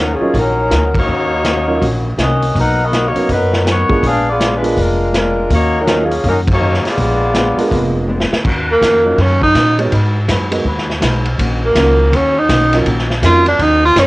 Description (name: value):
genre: jazz, big band swing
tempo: 163 BPM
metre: 4/4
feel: swing 64% on 8ths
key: Eb minor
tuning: A4 = 437 Hz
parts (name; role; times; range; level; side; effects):
- mellow saxophone section; melody; 0.0-8.1 s; F3 to F#5; -16 LUFS; left 1 dB; cassette tape
- vintage hollow-body jazz guitar; accompaniment; 0.0-14.1 s; Bb2 to Cb5; -23 LUFS; left 2 dB; cassette tape
- upright bass; bass; 0.0-14.1 s; F1 to Bb2; -17 LUFS; equal; none
- warm concert grand piano; accompaniment; 0.2-13.4 s; Gb3 to Db5; -19 LUFS; right 2 dB; cassette tape
- vintage drum kit; drums; 0.3-14.1 s; crash cymbal, hi-hat, kick drum, ride cymbal, snare drum; -19 LUFS; equal; cassette tape
- clear tenor saxophone; melody; 8.7-14.1 s; Bb3 to F4; -11 LUFS; right 1 dB; cassette tape
room: light reverb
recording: home recording on cassette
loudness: -11 LUFS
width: side -20 dB against mid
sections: 0.0-8.4 A section; 8.4-14.1 B section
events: band accent 0.9, 6.4; drum fill 8.1-8.4; tenor saxophone solo 8.4-14.1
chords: 0.0 Ebm7; 2.6 Bmaj7; 4.0 Bb7b9; 5.5 Ebm7; 7.0 Bb7b9; 8.4 Ebm7; 9.9 Abm7; 11.4 Ebm7